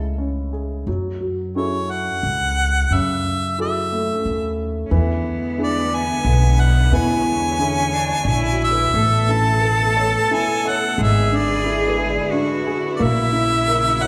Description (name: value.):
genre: acoustic folk-pop ballad.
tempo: 89 BPM.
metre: 3/4.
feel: straight.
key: unclear.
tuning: A4 = 441 Hz.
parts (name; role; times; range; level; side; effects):
warm upright piano; accompaniment; 0.0-14.1 s; C#3 to C#5; -28 LUFS; equal; none.
upright bass; bass; 0.0-14.1 s; G#1 to F#2; -24 LUFS; equal; none.
felt-muted upright piano; arpeggios; 1.2-14.1 s; A3 to D5; -30 LUFS; equal; none.
clear harmonica; melody; 1.6-14.1 s; C#5 to A5; -23 LUFS; equal; none.
bright cello; second line; 4.9-14.1 s; B3 to A4; -27 LUFS; equal; none.
clear chamber string section; sustained chords; 4.9-14.1 s; B2 to C#5; -33 LUFS; equal; none.
room: wet recital hall reverb, RT60 1.4 s.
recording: recorded in a church or concert hall.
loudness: -19 LUFS.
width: mono.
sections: 0.9-9.0 A section; 9.0-14.1 B section.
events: none.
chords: 0.0 Amaj7/C#; 0.9 F#m9; 4.9 E7; 9.0 Aadd9; 11.0 E7/G#; 13.0 F#7/A#.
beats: 0.19 | 0.87 1.56 2.23 | 2.91 3.58 4.25 | 4.92 5.59 6.26 | 6.92 7.60 8.27 | 8.95 9.63 10.31 | 10.99 11.66 12.34 | 13.01 13.68.